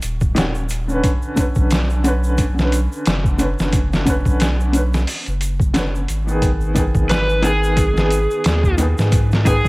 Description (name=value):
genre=trip hop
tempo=89 BPM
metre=4/4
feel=swing 56% on 16ths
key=unclear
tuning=A4 = 442 Hz
part: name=warm sub bass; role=bass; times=0.0-9.7 s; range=Eb1 to Ab2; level=-19 LUFS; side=equal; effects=none
part: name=trip hop sampler-style drum kit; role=drums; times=0.0-9.7 s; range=hi-hat, kick drum, snare drum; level=-19 LUFS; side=equal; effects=overdrive, studio reverb
part: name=tube shaker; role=percussion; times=0.0-9.7 s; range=none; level=-36 LUFS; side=right 2 dB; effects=none
part: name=felt-muted upright piano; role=accompaniment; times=0.3-9.7 s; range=D3 to Cb5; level=-22 LUFS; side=equal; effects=tremolo
part: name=overdriven slide guitar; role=melody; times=7.1-9.7 s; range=Ab4 to Cb5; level=-20 LUFS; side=right 1 dB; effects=tape echo
room=light reverb, digital ambience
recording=vinyl crackle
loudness=-15 LUFS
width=side -22 dB against mid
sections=0.0-9.7 A section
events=none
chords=0.0 Ebm7; 1.0 Bmadd9; 6.4 Abm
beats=0.36 | 1.04 1.71 2.39 3.06 | 3.74 4.41 5.08 5.76 | 6.43 7.11 7.78 8.46 | 9.13